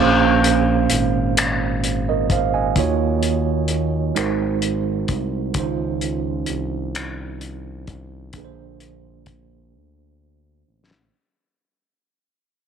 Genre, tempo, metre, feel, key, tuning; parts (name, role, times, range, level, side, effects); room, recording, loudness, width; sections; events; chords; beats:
slow six-eight R&B; 43 BPM (dotted quarters); 6/8; straight; Bb minor; A4 = 440 Hz
tine electric piano; accompaniment; 0.0-11.2 s; Bb2 to Ab5; -21 LUFS; right 10 dB; medium stereo tremolo
smooth synth bass; bass; 0.0-11.1 s; Ab1 to Eb2; -24 LUFS; left 3 dB; transformer saturation
cloth-damped thuddy drum kit; drums; 0.4-11.1 s; finger snaps, hi-hat, kick drum, snare drum; -22 LUFS; left 4 dB
moderate spring reverb, RT60 2.7 s; 1960s-style stereo; -18 LUFS; side -7 dB against mid
0.0-11.1 A section
fade-out 0.0-11.1; drum fill 9.7-11.1
0.0 Bbm7; 2.8 Ebm7; 4.2 Ab7; 5.5 Dbmaj9; 8.3 Bb7
1.36 | 2.76 4.15 | 5.55 6.94 | 8.34 9.73